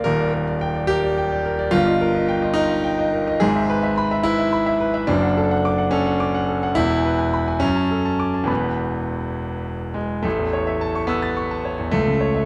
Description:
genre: classical, virtuoso piano study.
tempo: 71 BPM (dotted quarters).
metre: 6/8.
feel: rubato.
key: A major from 3.4 s.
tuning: A4 = 440 Hz.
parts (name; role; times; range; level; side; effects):
clear grand piano; solo; 0.0-12.5 s; Eb1 to A6; -21 LUFS; equal; none.
room: moderate recital hall reverb, RT60 1.4 s.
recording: close, detailed microphones.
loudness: -21 LUFS.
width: mono.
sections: 0.0-10.2 A section; 10.2-12.5 B section.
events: none.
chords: 0.1 Ebmaj7; 1.7 Eb/G; 3.4 E/G#; 5.1 D/F#; 6.8 E; 7.6 D/F#; 8.5 E; 10.2 A; 11.9 A/C#.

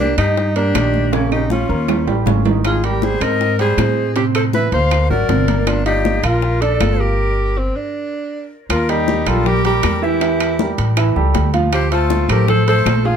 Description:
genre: Afro-Cuban jazz.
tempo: 158 BPM.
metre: 4/4.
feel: straight.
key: G minor.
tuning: A4 = 440 Hz.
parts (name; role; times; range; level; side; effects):
clear alto saxophone; melody; 0.0-13.2 s; Bb3 to C5; -20 LUFS; right 1 dB; none.
breathy bright jazz flute; second line; 0.0-13.2 s; Db4 to F5; -24 LUFS; left 6 dB; tape echo.
warm grand piano; accompaniment; 0.0-13.2 s; C3 to F5; -21 LUFS; right 4 dB; none.
upright bass; bass; 0.0-13.2 s; G1 to A2; -18 LUFS; equal; none.
bongos; percussion; 0.2-13.1 s; none; -26 LUFS; left 10 dB; none.
claves; percussion; 0.2-13.1 s; none; -29 LUFS; right 4 dB; none.
congas; percussion; 0.2-13.1 s; none; -25 LUFS; left 1 dB; none.
timbales; percussion; 0.2-13.1 s; none; -25 LUFS; right 8 dB; none.
room: light reverb.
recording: close, detailed microphones.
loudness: -14 LUFS.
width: side -8 dB against mid.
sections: 0.0-8.7 A section; 8.7-13.2 B section.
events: drum fill 1.1-2.6; stop 7.2-8.7.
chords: 0.0 Cm9 (rootless); 1.1 Bbm; 1.9 Eb7; 2.6 Abmaj9; 4.2 Am; 4.9 Daug7; 5.7 Gm7; 7.9 N.C.; 8.7 Eb; 10.2 Edim; 11.0 A7; 11.7 Dm7.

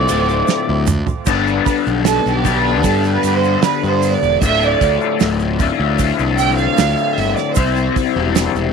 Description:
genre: psychedelic rock.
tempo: 76 BPM.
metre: 4/4.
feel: straight.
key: unclear.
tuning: A4 = 435 Hz.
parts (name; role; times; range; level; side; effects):
octave-fuzz lead guitar; melody; 0.0-0.8 s; D5; -22 LUFS; left 1 dB; wah, distortion, tape echo.
warm studio string section; sustained chords; 0.0-7.9 s; F3 to G5; -19 LUFS; right 14 dB; none.
raw garage guitar; riff; 0.0-8.7 s; D2 to C5; -18 LUFS; left 14 dB; overdrive, rotary speaker.
fuzz fingered electric bass; bass; 0.0-8.7 s; D1 to G2; -19 LUFS; right 1 dB; overdrive.
damped 70s drum kit; drums; 0.1-8.5 s; crash cymbal, hi-hat, kick drum, snare drum, toms; -20 LUFS; right 5 dB; none.
egg shaker; percussion; 0.1-8.7 s; none; -31 LUFS; right 23 dB; none.
room: small room ambience.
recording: 1960s-style stereo with parts hard left and right.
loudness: -13 LUFS.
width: side -6 dB against mid.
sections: 0.0-1.3 A section; 1.3-8.7 B section.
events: drum fill 0.5-1.3; string section solo 1.3-8.7.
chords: 0.0 Dm; 1.3 G; 4.4 Dm; 7.6 C.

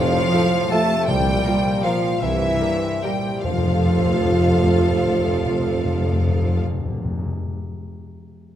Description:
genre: classical.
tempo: 141-172 BPM.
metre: 3/4.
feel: rubato.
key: F major.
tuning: A4 = 441 Hz.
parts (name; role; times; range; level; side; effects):
clear studio violin section; melody; 0.0-6.6 s; E5 to A5; -31 LUFS; left 3 dB; none.
clear studio violin section; second line; 0.0-6.6 s; E5 to A5; -31 LUFS; left 2 dB; none.
mellow clarinet; second line; 0.0-6.6 s; E4 to A4; -31 LUFS; equal; none.
small flute group; second line; 0.0-6.6 s; E5 to A5; -32 LUFS; left 1 dB; none.
mellow bassoon; accompaniment; 0.0-6.6 s; E3 to A3; -25 LUFS; right 2 dB; none.
dark French horn section; sustained chords; 0.0-6.6 s; G2 to F4; -28 LUFS; left 3 dB; none.
concert harp; arpeggios; 0.0-7.5 s; F2 to Bb5; -30 LUFS; left 8 dB; none.
clear studio cello section; bass; 0.0-6.6 s; E3 to A3; -28 LUFS; right 2 dB; none.
mellow tuba; bass; 0.0-6.6 s; F1 to C2; -27 LUFS; right 3 dB; none.
rich studio double bass section; bass; 0.0-6.6 s; C2 to F2; -27 LUFS; right 2 dB; none.
timpani; percussion; 0.0-7.3 s; F2 to C3; -24 LUFS; left 2 dB; none.
rich studio viola section; accompaniment; 0.3-6.6 s; F4 to Bb4; -29 LUFS; equal; none.
clear trombone section; sustained chords; 0.3-6.6 s; F3 to Bb3; -29 LUFS; right 3 dB; none.
room: moderate concert hall reverb, RT60 2.3 s.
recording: none.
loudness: -17 LUFS.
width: side -11 dB against mid.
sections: 0.0-3.4 A section; 3.4-5.8 B section.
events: slowing down 0.5-3.4.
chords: 0.0 F; 1.1 C7sus4; 2.2 C7; 3.4 F.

